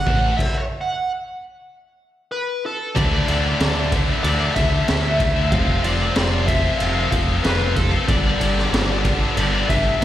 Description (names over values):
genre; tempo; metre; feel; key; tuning
quiet-loud alternative rock; 94 BPM; 4/4; straight; unclear; A4 = 438 Hz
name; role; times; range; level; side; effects
smooth overdriven lead guitar; melody; 0.0-10.0 s; A4 to F#5; -24 LUFS; left 1 dB; slapback echo, digital delay
high-gain distorted guitar; riff; 0.0-10.0 s; G2 to F4; -26 LUFS; left 11 dB; distortion, slapback echo
high-gain distorted guitar; riff; 0.0-10.0 s; G2 to F4; -28 LUFS; right 10 dB; distortion
growling picked electric bass; bass; 0.1-10.0 s; F1 to D2; -22 LUFS; equal; overdrive
raw garage drum kit; drums; 0.1-10.0 s; crash cymbal, kick drum, ride cymbal, snare drum; -22 LUFS; equal; none
distorted electric guitar; riff; 3.0-10.0 s; F2 to D4; -28 LUFS; equal; overdrive, slapback echo
room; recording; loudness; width
studio reverb; live gig heard through the venue's PA, recital hall reverb; -17 LUFS; side -12 dB against mid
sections
0.0-3.0 A section; 3.0-10.0 B section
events
lead electric guitar solo 0.0-3.0; stop 0.4-3.0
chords
0.1 A5; 3.0 Dsus2; 5.5 Fsus2; 8.1 G